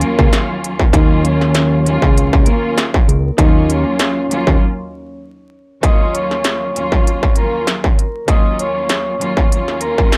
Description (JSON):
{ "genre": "hip hop, boom-bap hip-hop", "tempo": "98 BPM", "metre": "4/4", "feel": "swing 55% on 16ths", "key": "Eb minor", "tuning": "A4 = 440 Hz", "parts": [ { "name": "vibraphone with medium hard mallets", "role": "melody", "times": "0.0-10.1 s", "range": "Bb3 to Eb6", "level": "-22 LUFS", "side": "equal", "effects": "high-pass filter, low-pass filter, digital delay" }, { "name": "warm studio string section", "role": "accompaniment", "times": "0.0-10.2 s", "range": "Eb2 to F4", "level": "-24 LUFS", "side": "equal", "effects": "high-pass filter, low-pass filter" }, { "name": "fat analog bass", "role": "bass", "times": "0.0-4.6 s", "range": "Db2 to Eb2", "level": "-17 LUFS", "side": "equal", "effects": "none" }, { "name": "industrial drum kit", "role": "drums", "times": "0.0-10.2 s", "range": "hi-hat, kick drum, snare drum", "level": "-16 LUFS", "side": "equal", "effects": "distortion" } ], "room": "little or no reverb", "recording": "vinyl crackle", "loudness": "-15 LUFS", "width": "mono", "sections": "0.0-5.8 A section; 5.8-10.2 B section", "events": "break 4.6-5.8", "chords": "0.0 Ebm7" }